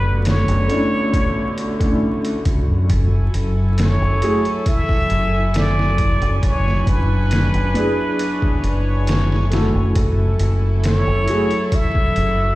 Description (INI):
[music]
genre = trip hop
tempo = 68 BPM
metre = 4/4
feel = straight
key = F# minor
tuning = A4 = 439 Hz
[part]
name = trumpet with plunger mute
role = melody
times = 0.0-12.6 s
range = B4 to E5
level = -24 LUFS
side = equal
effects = dub echo
[part]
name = rich chamber string section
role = sustained chords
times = 0.0-12.6 s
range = D3 to G#5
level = -25 LUFS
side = equal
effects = none
[part]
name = deep dub fingered electric bass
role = bass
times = 0.0-12.6 s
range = F#1 to F#2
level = -18 LUFS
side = equal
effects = none
[part]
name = flickering grainy texture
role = texture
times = 0.0-12.6 s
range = E4 to F#4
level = -35 LUFS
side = left 2 dB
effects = none
[part]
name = trip hop sampler-style drum kit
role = drums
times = 0.3-12.4 s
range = hi-hat, kick drum, snare drum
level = -21 LUFS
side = equal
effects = overdrive
[part]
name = felt-muted upright piano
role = accompaniment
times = 0.7-11.5 s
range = A3 to A4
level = -23 LUFS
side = equal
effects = tremolo, tape echo
[sound]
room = light reverb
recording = played on a big sound system in a bare room, large studio reverb, vinyl crackle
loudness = -15 LUFS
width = side -18 dB against mid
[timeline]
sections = 0.0-12.6 A section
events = none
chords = 0.0 Bm11/F#; 2.9 F#m9; 6.4 E7/F#; 10.0 F#m9